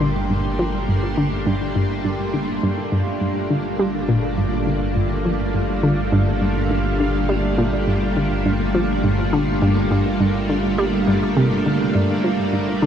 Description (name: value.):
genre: ambient, sequencer-driven space music.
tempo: 103 BPM.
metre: 4/4.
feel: straight.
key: G minor.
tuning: A4 = 441 Hz.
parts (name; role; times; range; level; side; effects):
string machine, full ensemble; sustained chords; 0.0-12.9 s; G3 to D4; -22 LUFS; equal; ensemble chorus, shimmer reverb.
analog pluck; riff; 0.0-12.9 s; G2 to G3; -20 LUFS; equal; chorus, analog delay, shimmer reverb.
round analog bass; bass; 0.0-12.9 s; G1; -27 LUFS; equal; none.
bubbling stepped-filter texture; texture; 0.0-12.9 s; F4 to C6; -29 LUFS; equal; chorus, built-in reverb, shimmer reverb.
room: wet huge ambient reverb, RT60 6.9 s.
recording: in a vast, echoing space.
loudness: -18 LUFS.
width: side -9 dB against mid.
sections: 0.0-12.9 A section.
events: fade-in on string machine 0.0-12.9; filter sweep on synth arpeggio sound 0.0-12.9.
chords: 0.0 Gm.